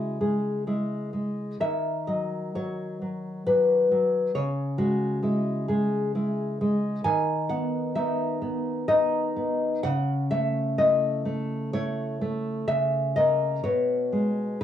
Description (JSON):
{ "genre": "romantic piece for solo classical guitar", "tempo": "60-70 BPM", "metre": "3/4", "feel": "rubato", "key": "unclear", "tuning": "A4 = 440 Hz", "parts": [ { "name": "nylon-string guitar", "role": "solo", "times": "0.0-14.6 s", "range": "B2 to G#5", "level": "-24 LUFS", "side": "left 1 dB", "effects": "none" } ], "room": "light reverb", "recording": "home recording on cassette, small room ambience", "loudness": "-24 LUFS", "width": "side -10 dB against mid", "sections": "0.0-14.6 A section", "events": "none", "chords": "0.0 C#m; 1.6 B/D#; 4.3 C#m; 7.0 B/D#; 9.8 A/C#; 12.7 C#m69; 13.7 G#madd11/B" }